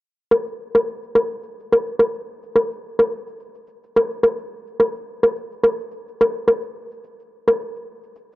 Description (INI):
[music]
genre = afrobeats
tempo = 107 BPM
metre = 4/4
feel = swing 55% on 16ths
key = none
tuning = none
[part]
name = electronic shaker and rim click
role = drums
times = 0.3-8.4 s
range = none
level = -17 LUFS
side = equal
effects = none
[sound]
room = light reverb, digital ambience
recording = dry, gritty hardware recording, transformer saturation, cassette tape, low-pass filter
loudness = -18 LUFS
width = side -18 dB against mid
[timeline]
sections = 0.3-8.4 A section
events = none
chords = none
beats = | 0.31 0.87 1.43 1.99 | 2.55 3.12 3.68 4.24 | 4.80 5.36 5.92 6.48 | 7.04 7.60 8.16